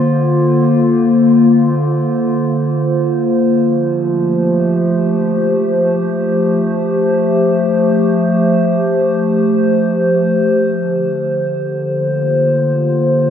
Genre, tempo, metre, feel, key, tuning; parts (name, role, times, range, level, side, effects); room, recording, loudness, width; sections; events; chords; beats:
ambient; free time; A4 = 440 Hz
warbly tape-like pad; solo; 0.0-13.3 s; D3 to C5; -12 LUFS; equal; chorus, built-in reverb, tape echo
wet cathedral reverb, RT60 5.8 s; -12 LUFS; side -8 dB against mid
0.0-10.8 A section; 10.8-13.3 B section
0.0 Bbadd9; 3.6 Fadd9; 10.8 Bbadd9
free time